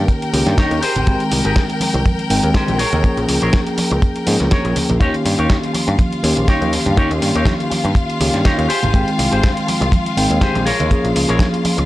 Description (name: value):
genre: nu-disco, nu disco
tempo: 122 BPM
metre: 4/4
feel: swing 54% on 16ths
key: Eb mixolydian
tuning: A4 = 440 Hz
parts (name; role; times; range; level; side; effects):
- mellow tine electric piano; accompaniment; 0.0-11.9 s; Eb3 to G5; -19 LUFS; equal; sidechain pumping, analog delay
- clear studio string section; sustained chords; 0.0-11.9 s; F4 to G5; -24 LUFS; left 2 dB; sidechain pumping
- picked electric bass; bass; 0.0-11.9 s; Ab1 to Ab2; -20 LUFS; equal; none
- electric guitar with an envelope filter; riff; 0.1-11.8 s; Eb4 to Db5; -22 LUFS; left 1 dB; wide subtle chorus, analog delay
- dusty soul sampler-style drum kit; drums; 0.1-11.9 s; hi-hat, snare drum; -24 LUFS; equal; none
- kick drum; drums; 0.1-11.5 s; none; -15 LUFS; equal; none
- congas; percussion; 1.0-11.8 s; none; -25 LUFS; right 2 dB; none
room: studio reverb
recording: dry, gritty hardware recording, cassette tape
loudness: -14 LUFS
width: side -16 dB against mid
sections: 0.0-11.9 A section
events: none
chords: 0.0 Eb7; 0.8 Abmaj7; 2.8 Bbm7; 5.0 Eb7; 8.7 Abmaj7; 10.7 Bbm7